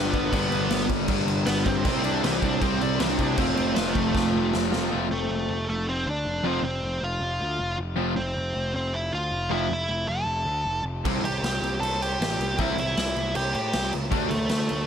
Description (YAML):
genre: punk rock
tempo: 157 BPM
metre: 4/4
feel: straight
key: unclear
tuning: A4 = 441 Hz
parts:
  - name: high-gain lead guitar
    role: melody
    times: 0.0-14.9 s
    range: E3 to A5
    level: -28 LUFS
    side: equal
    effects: distortion, ping-pong delay
  - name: distorted electric guitar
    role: riff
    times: 0.0-14.3 s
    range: F2 to D4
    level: -28 LUFS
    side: left 16 dB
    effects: overdrive
  - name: raw garage guitar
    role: riff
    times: 0.0-14.3 s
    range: G2 to F#4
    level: -29 LUFS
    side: right 14 dB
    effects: overdrive
  - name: fuzz picked electric bass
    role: bass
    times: 0.0-14.9 s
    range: F1 to A2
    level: -30 LUFS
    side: equal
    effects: overdrive
  - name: raw garage drum kit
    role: drums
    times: 0.1-4.8, 11.1-14.8 s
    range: crash cymbal, kick drum, snare drum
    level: -28 LUFS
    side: right 1 dB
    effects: none
room: light reverb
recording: none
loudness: -23 LUFS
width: side -8 dB against mid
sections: 0.0-4.9 A section; 4.9-14.9 B section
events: drum fill 4.2-4.9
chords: 0.0 G; 1.9 C; 3.4 F; 11.1 C; 14.1 D